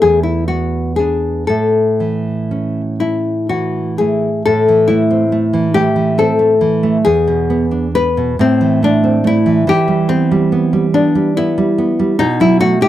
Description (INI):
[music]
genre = romantic duo for nylon-string guitar and classical guitar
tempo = 39-48 BPM (dotted quarters)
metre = 6/8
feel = rubato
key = A major, A minor from 4.5 s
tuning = A4 = 438 Hz
[part]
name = nylon-string guitar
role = melody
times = 0.0-12.9 s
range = C4 to B4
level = -14 LUFS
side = left 4 dB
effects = none
[part]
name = nylon-string guitar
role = accompaniment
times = 0.0-12.9 s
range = E2 to D#4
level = -15 LUFS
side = right 3 dB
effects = none
[sound]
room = light reverb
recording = dry, close 1970s-style studio recording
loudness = -12 LUFS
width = side -12 dB against mid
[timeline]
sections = 0.0-4.5 A section; 4.5-12.9 B section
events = none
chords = 0.0 E5; 1.5 A; 4.5 Am; 7.1 E7; 8.4 Am; 9.7 Em; 12.2 B7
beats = 0.03 | 1.49 3.00 | 4.46 5.75 | 7.06 8.40 | 9.67 10.94 | 12.20